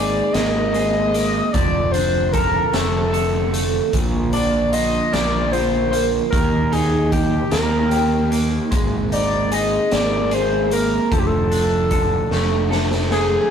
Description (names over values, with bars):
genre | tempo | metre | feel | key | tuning
psychedelic rock | 50 BPM (dotted quarters) | 6/8 | straight | unclear | A4 = 441 Hz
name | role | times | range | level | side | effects
overdriven synth lead | melody | 0.0-13.5 s | G4 to Eb5 | -21 LUFS | left 2 dB | distortion
mellow tonewheel organ | sustained chords | 0.0-13.5 s | D3 to Eb4 | -27 LUFS | right 4 dB | slow rotary speaker
electric guitar through a small old amp | riff | 0.0-13.5 s | Bb2 to A4 | -22 LUFS | right 2 dB | phaser
fuzz fingered electric bass | bass | 0.0-13.4 s | F1 to Eb2 | -22 LUFS | equal | overdrive
raw garage drum kit | drums | 0.3-13.3 s | hi-hat, kick drum, snare drum | -24 LUFS | equal | none
room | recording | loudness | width
moderate stone room reverb, RT60 1.4 s | rough rehearsal-room recording, tube saturation | -16 LUFS | side -7 dB against mid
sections
0.0-13.5 A section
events
drum fill 12.3-13.5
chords
0.0 Abadd9; 1.5 F6; 3.9 Bb; 6.3 Eb; 8.7 Abadd9; 11.1 F6